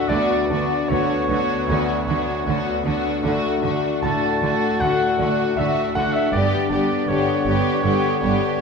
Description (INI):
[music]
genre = cinematic, emotional film score for orchestra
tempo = 78 BPM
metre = 4/4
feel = rubato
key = D major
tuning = A4 = 440 Hz
[part]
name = warm studio violin section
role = melody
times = 0.0-8.6 s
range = F#4 to G4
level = -26 LUFS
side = left 4 dB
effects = none
[part]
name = clear oboe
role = second line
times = 0.0-8.6 s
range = C#5 to A5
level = -27 LUFS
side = right 3 dB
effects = none
[part]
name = rich studio violin section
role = second line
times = 0.0-8.6 s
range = D4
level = -30 LUFS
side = left 1 dB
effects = none
[part]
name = bright concert grand piano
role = accompaniment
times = 0.0-8.6 s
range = D2 to A5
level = -25 LUFS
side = equal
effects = none
[part]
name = rich studio viola section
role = accompaniment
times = 0.0-8.6 s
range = A3 to B3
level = -30 LUFS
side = right 4 dB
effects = none
[part]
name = warm French horn section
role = sustained chords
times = 0.0-8.6 s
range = A3 to G4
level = -26 LUFS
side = left 5 dB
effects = none
[part]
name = concert harp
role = arpeggios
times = 0.0-8.6 s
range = G2 to B5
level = -29 LUFS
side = left 7 dB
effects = none
[part]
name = rich studio cello section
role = bass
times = 0.1-8.3 s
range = G2 to D3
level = -28 LUFS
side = right 4 dB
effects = none
[part]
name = rich studio double bass section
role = bass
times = 0.1-8.3 s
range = G1 to D2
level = -28 LUFS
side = right 5 dB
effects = none
[sound]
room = wet scoring stage reverb, RT60 1.6 s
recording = minimal, uncompressed stereo recording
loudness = -18 LUFS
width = side -5 dB against mid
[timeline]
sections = 0.0-8.6 A section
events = none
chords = 0.1 Bmadd9/D; 3.2 D; 6.3 G